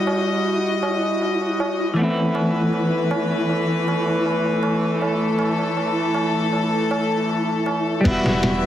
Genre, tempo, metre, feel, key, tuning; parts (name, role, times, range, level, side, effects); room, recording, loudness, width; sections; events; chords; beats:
trip hop; 79 BPM; 4/4; straight; A4 = 442 Hz
semi-hollow electric guitar; accompaniment; 0.0-8.7 s; E3 to F#4; -23 LUFS; equal; harmonic tremolo, tape echo
rich chamber string section; sustained chords; 0.0-8.7 s; E3 to E5; -21 LUFS; left 1 dB
flickering grainy texture; texture; 0.0-8.7 s; E4 to B4; -28 LUFS; right 1 dB; built-in reverb
tabla; percussion; 0.1-8.0 s; -29 LUFS; right 3 dB
warm sub bass; bass; 8.1-8.7 s; E1; -28 LUFS; equal; tube saturation
trip hop sampler-style drum kit; drums; 8.1-8.6 s; crash cymbal, hi-hat, kick drum, snare drum; -21 LUFS; equal
light reverb; heavily compressed radio sound, vinyl crackle; -18 LUFS; side -11 dB against mid
0.0-8.1 A section
0.0 Emadd9; 2.0 Amadd9/E; 8.1 Emadd9
0.46 1.22 | 1.98 2.74 3.50 4.26 | 5.01 5.78 6.53 7.29 | 8.05